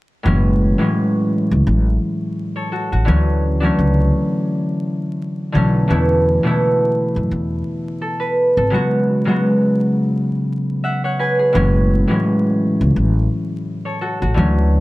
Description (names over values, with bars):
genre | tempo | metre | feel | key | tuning
hip hop | 85 BPM | 4/4 | swing 56% on 16ths | F# minor | A4 = 440 Hz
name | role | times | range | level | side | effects
concert harp | accompaniment | 0.2-14.8 s | A2 to G#5 | -16 LUFS | equal | high-pass filter, low-pass filter
upright bass | bass | 0.3-14.8 s | F#1 to F#2 | -17 LUFS | equal | none
room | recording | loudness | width
light reverb | vinyl crackle | -15 LUFS | side -19 dB against mid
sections
0.2-14.8 A section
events
harp fill 10.5-11.5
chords
0.2 F#m7; 3.1 Dmaj7; 5.9 Esus4; 8.7 C#7sus4; 11.5 F#m7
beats
| 0.25 0.95 1.66 2.37 | 3.07 3.78 4.48 5.19 | 5.90 6.60 7.31 8.01 | 8.72 9.43 10.13 10.84 | 11.54 12.25 12.96 13.66 | 14.37